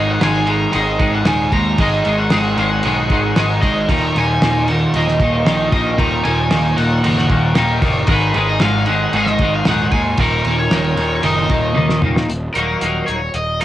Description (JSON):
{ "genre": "indie rock", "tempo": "114 BPM", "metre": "4/4", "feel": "straight", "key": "Eb minor", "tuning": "A4 = 440 Hz", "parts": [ { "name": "cranked stack guitar", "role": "melody", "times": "0.0-13.6 s", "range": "Bb4 to Bb5", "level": "-21 LUFS", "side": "equal", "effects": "overdrive, cassette tape" }, { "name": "twelve-string electric guitar", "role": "riff", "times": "0.0-13.6 s", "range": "Eb2 to Eb4", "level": "-17 LUFS", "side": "equal", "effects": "double-tracked left and right, cassette tape" }, { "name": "fuzz picked electric bass", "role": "bass", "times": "0.0-13.6 s", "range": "Eb1 to Eb2", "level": "-22 LUFS", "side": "equal", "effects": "overdrive" }, { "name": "cloth-damped thuddy drum kit", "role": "drums", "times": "0.2-13.6 s", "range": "crash cymbal, hi-hat, kick drum, snare drum, toms", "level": "-20 LUFS", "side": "equal", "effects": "cassette tape" } ], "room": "light reverb", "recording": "home recording on cassette", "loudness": "-13 LUFS", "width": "side -13 dB against mid", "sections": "0.0-12.3 A section; 12.3-13.6 B section", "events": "drum fill 11.8-12.3", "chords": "0.0 Ab7(no3); 3.9 Ebm; 8.1 Ab5; 10.2 Eb5; 12.3 Ebm", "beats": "0.21 0.74 1.26 | 1.79 2.31 2.84 3.37 | 3.89 4.42 4.94 5.47 | 5.99 6.52 7.04 7.57 | 8.09 8.62 9.14 9.67 | 10.19 10.72 11.25 11.77 | 12.30 12.83 13.36" }